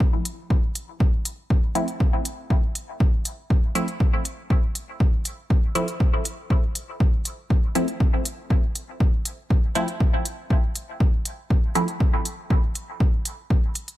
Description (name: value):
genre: dub techno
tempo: 120 BPM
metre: 4/4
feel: straight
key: unclear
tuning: A4 = 441 Hz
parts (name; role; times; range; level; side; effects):
- electronic kick drum; drums; 0.0-13.6 s; none; -20 LUFS; equal; studio reverb
- electronic hi-hat; drums; 0.3-14.0 s; none; -28 LUFS; equal; studio reverb
- filtered dub chord stab; stabs; 1.8-11.9 s; F3 to E4; -28 LUFS; equal; phaser, dub echo
room: digital ambience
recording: none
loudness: -21 LUFS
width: side -15 dB against mid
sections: 0.0-14.0 A section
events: none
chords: 0.0 Fmaj7